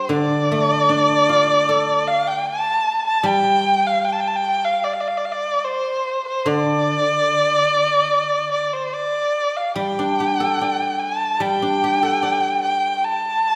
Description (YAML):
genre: chinese traditional, Chinese chamber ensemble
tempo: 74 BPM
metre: 4/4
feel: rubato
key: D yu mode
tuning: A4 = 442 Hz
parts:
  - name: warm erhu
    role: melody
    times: 0.0-13.6 s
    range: C5 to A5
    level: -20 LUFS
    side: equal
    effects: none
  - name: guzheng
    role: accompaniment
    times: 0.0-13.6 s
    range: D3 to D5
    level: -26 LUFS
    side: equal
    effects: none
room: wet recital hall reverb, RT60 1.7 s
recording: heard from further back in the room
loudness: -19 LUFS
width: mono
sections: 0.0-13.6 A section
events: none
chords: none